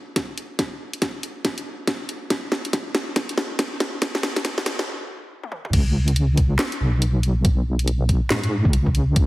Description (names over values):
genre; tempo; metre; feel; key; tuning
deep dubstep; 140 BPM; 4/4; swing 61% on 16ths, half-time; unclear; A4 = 440 Hz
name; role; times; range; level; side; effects
electronic kick drum; drums; 0.2-9.3 s; none; -21 LUFS; equal; high-pass filter on kick, small room ambience, high-pass filter on room
garage drum kit; drums; 0.2-9.3 s; crash cymbal, handclaps, hi-hat, snare drum, toms; -24 LUFS; equal; small room ambience
deep soft wobble bass; bass; 5.7-9.3 s; B1 to G#2; -19 LUFS; equal; chorus
room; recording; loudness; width
light reverb, digital ambience; heavily compressed radio sound, high-pass filter; -20 LUFS; side -19 dB against mid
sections
0.0-5.7 A section; 5.7-9.3 B section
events
build-up 0.0-5.7; drum fill 0.0-4.9, 5.4-5.7; stop 4.9-5.7; drop 5.7-9.3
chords
none